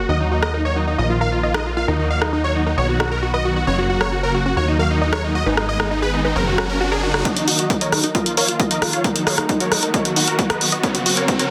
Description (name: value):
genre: uplifting trance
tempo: 134 BPM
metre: 4/4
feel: straight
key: Eb minor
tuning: A4 = 439 Hz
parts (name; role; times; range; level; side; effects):
- supersaw chords; melody; 0.0-11.5 s; Eb4 to F5; -25 LUFS; equal; sidechain pumping, low-pass filter, digital delay
- analog string pad; sustained chords; 0.0-11.5 s; Db3 to Ab4; -28 LUFS; equal; ensemble chorus, sidechain pumping
- unison pluck; arpeggios; 0.0-11.5 s; Db4 to Eb5; -29 LUFS; equal; sidechain pumping, digital delay
- plucky analog bass; bass; 0.0-7.2 s; Gb1 to Eb2; -25 LUFS; equal; tube saturation, sidechain pumping
- punchy analog drum machine; drums; 0.4-11.5 s; hi-hat, rim click; -23 LUFS; equal; soft clipping on snare
- riser; sound effects; 5.4-11.5 s; none; -31 LUFS; equal; none
- electronic kick drum; drums; 7.3-11.4 s; none; -23 LUFS; equal; high-pass filter on kick
room: light reverb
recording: dense, heavily limited modern master, faint mains hum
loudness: -19 LUFS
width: mono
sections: 0.0-7.3 A section; 7.3-11.5 B section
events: riser 5.4-7.3; build-up 7.3-11.5; filter sweep on supersaw synth 7.3-11.5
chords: 0.1 Ebm; 1.0 Bbsus4; 1.9 Ebm; 2.8 B; 3.7 Gb; 4.6 Ebm; 5.5 Abm; 6.4 Gb; 7.3 Ebm; 8.2 Bbsus4; 9.0 Ebm; 9.9 B; 10.8 Gb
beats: | 0.09 0.54 0.98 1.43 | 1.88 2.33 2.78 3.22 | 3.67 4.12 4.57 5.01 | 5.46 5.91 6.36 6.81 | 7.25 7.70 8.15 8.60 | 9.04 9.49 9.94 10.39 | 10.84 11.28